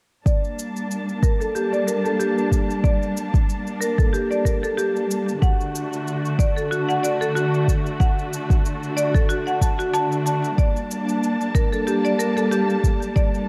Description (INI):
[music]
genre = organic downtempo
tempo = 93 BPM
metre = 4/4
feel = swing 55% on 16ths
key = G harmonic minor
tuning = A4 = 441 Hz
[part]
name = dark symphonic string section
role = sustained chords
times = 0.3-13.5 s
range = D3 to A5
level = -27 LUFS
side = equal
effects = sidechain pumping, low-pass filter
[part]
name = marimba with hard mallets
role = arpeggios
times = 0.3-13.3 s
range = F#4 to A5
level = -26 LUFS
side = equal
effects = low-pass filter, delay
[part]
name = electronic kick drum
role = drums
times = 0.3-13.3 s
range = none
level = -21 LUFS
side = equal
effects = none
[part]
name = shaker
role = drums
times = 0.3-13.5 s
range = none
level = -38 LUFS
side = equal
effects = overdrive
[sound]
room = light reverb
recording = dark, warm production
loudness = -22 LUFS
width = mono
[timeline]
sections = 0.3-13.5 A section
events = filter sweep on marimba 0.3-13.5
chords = 0.3 Gmadd9; 5.4 D; 10.6 Gmadd9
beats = | 0.26 0.91 1.55 2.19 | 2.84 3.48 4.13 4.78 | 5.42 6.07 6.71 7.36 | 8.00 8.65 9.29 9.94 | 10.58 11.23 11.87 12.52 | 13.16